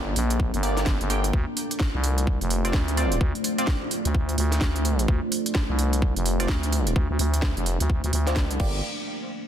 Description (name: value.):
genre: bass house.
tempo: 128 BPM.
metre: 4/4.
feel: swing 61% on 16ths.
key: unclear.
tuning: A4 = 441 Hz.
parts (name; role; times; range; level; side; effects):
deep dark ambient pad; sustained chords; 0.0-8.8 s; A3 to D5; -30 LUFS; right 1 dB; chorus, built-in reverb, sidechain pumping.
growling FM bass; bass; 0.0-8.8 s; F1 to D2; -24 LUFS; equal; tube saturation, sidechain pumping.
garage drum kit; drums; 0.2-8.7 s; crash cymbal, hi-hat, snare drum; -30 LUFS; right 1 dB; none.
electronic kick drum; drums; 0.4-8.7 s; none; -26 LUFS; equal; none.
band-passed chord stab; stabs; 0.6-8.8 s; Bb3 to G5; -32 LUFS; right 1 dB; phaser, sidechain pumping, dub echo.
room: little or no reverb.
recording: dense, heavily limited modern master.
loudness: -22 LUFS.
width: side -10 dB against mid.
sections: 0.0-8.8 A section.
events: filter sweep on FM bass 0.0-8.8; filter sweep on synth stab 0.0-8.8.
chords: 0.0 Gm; 1.3 Dm7; 8.6 Gm; 8.8 N.C..